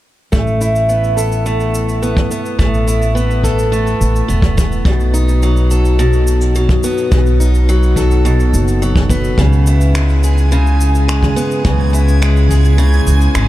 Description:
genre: folktronica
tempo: 106 BPM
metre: 4/4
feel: straight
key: A lydian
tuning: A4 = 442 Hz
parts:
  - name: picked steel-string acoustic guitar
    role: arpeggios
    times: 0.3-13.5 s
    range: B2 to A4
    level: -16 LUFS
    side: equal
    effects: vintage 12-bit sampler grit, low-pass filter, diffuse ambient delay
  - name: upright bass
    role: bass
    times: 0.3-13.5 s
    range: E1 to C#2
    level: -13 LUFS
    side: equal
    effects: none
  - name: electronic shaker and finger snaps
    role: drums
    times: 0.3-13.5 s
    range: none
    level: -27 LUFS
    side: equal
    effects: overdrive
  - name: kick drum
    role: drums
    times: 0.3-12.6 s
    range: none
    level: -16 LUFS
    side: equal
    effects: none
  - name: backwards swelling texture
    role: texture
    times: 10.3-13.5 s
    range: G#5 to G#6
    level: -25 LUFS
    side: right 2 dB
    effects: built-in reverb
room: light reverb, studio ambience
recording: none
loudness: -11 LUFS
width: side -15 dB against mid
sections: 0.3-13.5 A section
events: none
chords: 0.3 Asus2; 4.9 B7; 9.4 C#m7

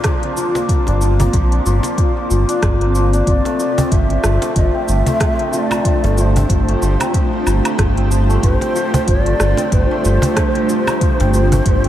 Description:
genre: organic downtempo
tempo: 93 BPM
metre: 4/4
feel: swing 58% on 16ths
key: unclear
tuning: A4 = 440 Hz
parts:
  - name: granular cloud pad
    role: sustained chords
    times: 0.0-11.9 s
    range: A3 to D5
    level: -22 LUFS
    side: equal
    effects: built-in reverb, vintage 12-bit sampler grit, sidechain pumping
  - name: santur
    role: arpeggios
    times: 0.0-11.9 s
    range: F3 to F4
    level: -20 LUFS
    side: left 2 dB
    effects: diffuse ambient delay
  - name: electronic kick drum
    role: drums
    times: 0.0-11.8 s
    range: none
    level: -17 LUFS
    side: equal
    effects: none
  - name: organic electronic drum kit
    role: drums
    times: 0.0-11.9 s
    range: hi-hat, rim click, shaker, woodblock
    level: -26 LUFS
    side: equal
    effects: none
  - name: cajon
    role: percussion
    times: 0.0-11.6 s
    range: none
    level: -25 LUFS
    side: right 1 dB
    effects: none
  - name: quartz singing bowl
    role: texture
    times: 0.0-11.9 s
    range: none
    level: barely audible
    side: none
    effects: none
  - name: round analog bass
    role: bass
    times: 0.9-11.9 s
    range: G1 to Bb1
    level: -15 LUFS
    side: equal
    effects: sidechain pumping
  - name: breathy mellow ney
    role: melody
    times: 3.3-11.9 s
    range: C5 to E5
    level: -22 LUFS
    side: equal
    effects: diffuse ambient delay
room: moderate cathedral reverb, RT60 6.8 s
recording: dreamy mix soaked in reverb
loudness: -13 LUFS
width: side -12 dB against mid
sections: 0.0-11.9 A section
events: none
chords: 0.0 Gm7; 3.3 Fadd9/G

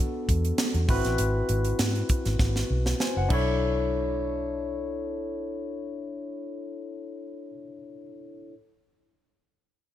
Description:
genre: polished 1980s jazz-funk pop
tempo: 99 BPM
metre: 4/4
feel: swing 54% on 16ths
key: B dorian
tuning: A4 = 440 Hz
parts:
  - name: barky tine electric piano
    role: accompaniment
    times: 0.0-8.5 s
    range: B3 to G#5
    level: -30 LUFS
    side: left 2 dB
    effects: overdrive, wide subtle chorus
  - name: vintage muted fingered electric bass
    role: bass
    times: 0.0-7.5 s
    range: F#1 to G#2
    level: -27 LUFS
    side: equal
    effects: none
  - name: tight funk drum kit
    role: drums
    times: 0.3-3.5 s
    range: crash cymbal, hi-hat, kick drum, snare drum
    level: -27 LUFS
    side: right 1 dB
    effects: gated reverb
room: light reverb, studio reverb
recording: none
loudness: -25 LUFS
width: side -12 dB against mid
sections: 0.0-3.6 A section; 3.6-6.0 B section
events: drum fill 2.4-3.6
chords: 0.0 E9sus4; 0.9 G#7alt; 3.3 Bm11

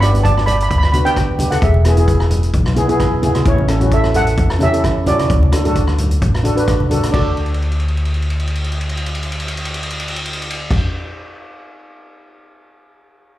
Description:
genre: calypso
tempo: 131 BPM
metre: 4/4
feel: swing 54% on 16ths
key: D major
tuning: A4 = 440 Hz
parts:
  - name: steel pan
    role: melody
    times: 0.0-10.7 s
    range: E4 to B5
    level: -19 LUFS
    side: right 2 dB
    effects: slapback echo
  - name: steel pan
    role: accompaniment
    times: 0.0-10.8 s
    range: B3 to B4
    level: -20 LUFS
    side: equal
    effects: slapback echo
  - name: upright bass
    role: bass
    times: 0.0-10.8 s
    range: E1 to E2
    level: -17 LUFS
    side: equal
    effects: none
  - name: street-band drum kit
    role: drums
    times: 0.0-12.3 s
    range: crash cymbal, hi-hat, kick drum, ride cymbal, rim click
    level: -20 LUFS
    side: equal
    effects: none
  - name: congas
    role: percussion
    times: 0.1-10.8 s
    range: none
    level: -22 LUFS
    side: equal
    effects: none
room: light reverb, small room ambience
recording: live gig heard through the venue's PA, club ambience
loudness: -14 LUFS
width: side -14 dB against mid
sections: 0.0-7.1 A section; 7.1-10.8 B section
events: drum fill 7.4-10.7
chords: 0.0 G; 1.6 E; 3.5 A; 5.3 D

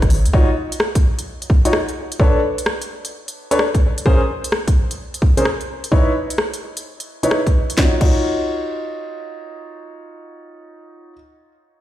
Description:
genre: UK garage, two-step garage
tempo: 129 BPM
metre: 4/4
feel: swing 66% on 16ths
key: Eb minor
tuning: A4 = 441 Hz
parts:
  - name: electronic kick drum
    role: drums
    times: 0.0-8.2 s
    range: none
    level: -15 LUFS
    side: equal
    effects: none
  - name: house drum kit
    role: drums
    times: 0.0-8.2 s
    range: crash cymbal, hi-hat, rim click, snare drum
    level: -23 LUFS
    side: equal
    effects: none
  - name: warm concert grand piano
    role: stabs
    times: 0.3-11.1 s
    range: Db4 to Db5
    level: -21 LUFS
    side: left 1 dB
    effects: dub echo
room: light reverb, digital ambience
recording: played on a big sound system in a bare room, stone room reverb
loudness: -15 LUFS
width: side -13 dB against mid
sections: 0.0-7.8 A section; 7.8-11.5 B section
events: none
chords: 0.3 Ebm9; 2.2 Bm9; 3.8 Bbm9; 5.9 Dbm9; 7.8 Ebm9

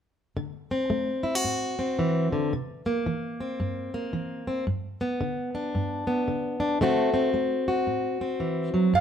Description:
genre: acoustic country blues, solo or duo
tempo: 112 BPM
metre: 4/4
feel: swing 62% on 8ths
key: unclear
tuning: A4 = 441 Hz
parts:
  - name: fingerpicked plugged-in steel-string acoustic guitar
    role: accompaniment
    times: 0.4-9.0 s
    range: G2 to F#4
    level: -25 LUFS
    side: equal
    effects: none
  - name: metal-body resonator slide guitar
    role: melody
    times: 9.0 s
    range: F5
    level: -18 LUFS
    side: right 5 dB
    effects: none
room: moderate studio reverb, RT60 0.9 s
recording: band playing live in one room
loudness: -25 LUFS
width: side -8 dB against mid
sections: 0.4-8.9 A section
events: none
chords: 0.4 D7; 2.5 C7; 4.7 G; 6.8 D7

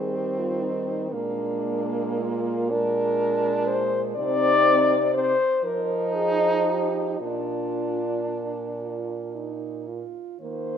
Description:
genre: classical, lyrical piece for horn quartet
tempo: 39 BPM (dotted quarters)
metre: 6/8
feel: uneven beats, rubato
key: unclear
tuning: A4 = 441 Hz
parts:
  - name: mellow French horn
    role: melody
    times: 0.0-10.8 s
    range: D4 to D5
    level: -24 LUFS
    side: left 4 dB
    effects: none
  - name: mellow French horn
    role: second line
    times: 0.0-10.8 s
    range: G3 to F4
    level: -33 LUFS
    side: right 12 dB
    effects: none
  - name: warm French horn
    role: accompaniment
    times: 0.0-9.6 s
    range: Bb3 to Eb4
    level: -28 LUFS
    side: right 1 dB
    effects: none
  - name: mellow French horn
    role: bass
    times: 0.0-10.8 s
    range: Bb2 to F3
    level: -30 LUFS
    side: right 2 dB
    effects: none
room: light reverb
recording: none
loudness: -22 LUFS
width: side -8 dB against mid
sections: 0.0-10.8 A section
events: none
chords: 0.0 Eb; 1.1 Bb7; 4.2 Cm; 5.6 Fm11; 7.2 Bb

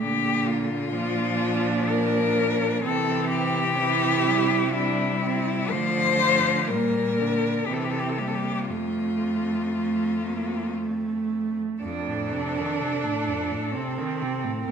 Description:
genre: classical, lyrical piece for cello ensemble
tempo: 53-66 BPM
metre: 3/4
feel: rubato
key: F major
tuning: A4 = 440 Hz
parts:
  - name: rich cello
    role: melody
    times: 0.0-14.7 s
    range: E4 to C5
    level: -26 LUFS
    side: left 6 dB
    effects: none
  - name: warm cello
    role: second line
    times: 0.0-14.7 s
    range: A3 to E4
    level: -28 LUFS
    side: right 7 dB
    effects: none
  - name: clear cello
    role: accompaniment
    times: 0.0-14.7 s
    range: F2 to A3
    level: -30 LUFS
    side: left 2 dB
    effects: none
  - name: clear cello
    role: bass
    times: 0.0-14.7 s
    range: F2 to D3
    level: -30 LUFS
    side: right 2 dB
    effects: none
room: wet recital hall reverb, RT60 1.4 s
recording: minimal, uncompressed stereo recording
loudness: -22 LUFS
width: side -7 dB against mid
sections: 0.0-11.8 A section; 11.8-14.7 B section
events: none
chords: 0.0 Bb; 2.8 C; 5.7 Dm; 6.7 Gm/Bb; 7.7 C7; 8.7 F; 11.8 F7

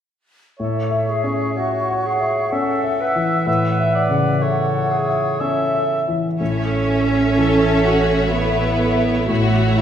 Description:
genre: cinematic, emotional film score for orchestra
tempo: 62 BPM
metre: 3/4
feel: rubato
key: A major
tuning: A4 = 441 Hz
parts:
  - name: bright clarinet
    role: second line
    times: 0.6-6.1 s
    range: F#4 to B4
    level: -26 LUFS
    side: left 1 dB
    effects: none
  - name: large flute ensemble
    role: second line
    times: 0.6-6.1 s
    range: E5 to F#5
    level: -25 LUFS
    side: right 1 dB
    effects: none
  - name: mellow cor anglais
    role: second line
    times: 0.6-6.1 s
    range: C#5 to E5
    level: -24 LUFS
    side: right 2 dB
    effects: none
  - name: warm concert grand piano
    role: accompaniment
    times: 0.6-9.8 s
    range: A2 to F#5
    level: -20 LUFS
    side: left 2 dB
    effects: none
  - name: dark studio violin section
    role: melody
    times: 6.4-9.8 s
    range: E5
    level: -27 LUFS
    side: left 4 dB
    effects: none
  - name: rich studio viola section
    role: accompaniment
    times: 6.4-9.8 s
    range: E4 to C#5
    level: -22 LUFS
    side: right 2 dB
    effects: none
  - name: rich studio cello section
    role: bass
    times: 6.4-9.8 s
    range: A3 to C#4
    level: -19 LUFS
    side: right 2 dB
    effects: none
  - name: rich studio double bass section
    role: bass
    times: 6.4-9.8 s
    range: A1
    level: -23 LUFS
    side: right 2 dB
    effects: none
  - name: warm studio violin section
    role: second line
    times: 7.4-9.8 s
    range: E4 to A4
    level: -22 LUFS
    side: left 2 dB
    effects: none
room: wet scoring stage reverb, RT60 1.6 s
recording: heard from further back in the room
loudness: -16 LUFS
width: side -9 dB against mid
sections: 0.6-6.4 A section; 6.4-9.8 B section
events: none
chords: 0.6 A

